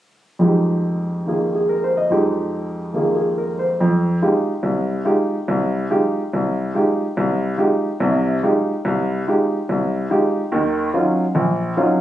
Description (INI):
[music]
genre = jazz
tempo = 143 BPM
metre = 4/4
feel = swing 66% on 8ths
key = F minor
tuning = A4 = 435 Hz
[part]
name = warm upright piano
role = solo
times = 0.4-12.0 s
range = Bb1 to Eb5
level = -17 LUFS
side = equal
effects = none
[sound]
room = light reverb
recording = recorded on a phone in the room, club reverb, compression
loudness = -17 LUFS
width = side -13 dB against mid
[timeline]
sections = 0.4-3.8 A section; 3.8-12.0 B section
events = none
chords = 0.4 Fm9; 10.5 Ebm9